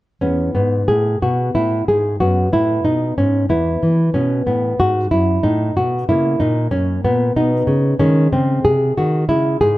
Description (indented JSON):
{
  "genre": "classical, baroque-style dance for nylon-string guitar",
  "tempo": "92 BPM",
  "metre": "3/4",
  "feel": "rubato",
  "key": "E major",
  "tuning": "A4 = 440 Hz",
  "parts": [
    { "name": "nylon-string guitar", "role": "solo", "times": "0.2-9.8 s", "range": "E2 to G#4", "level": "-14 LUFS", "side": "equal", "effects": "none" }
  ],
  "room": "light reverb",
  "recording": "close, detailed microphones",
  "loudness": "-14 LUFS",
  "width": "side -17 dB against mid",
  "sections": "0.2-9.8 A section",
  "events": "none",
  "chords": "0.2 E; 2.2 B5/F#; 3.5 E5; 4.2 B5; 6.1 F#; 7.4 B; 8.0 G#"
}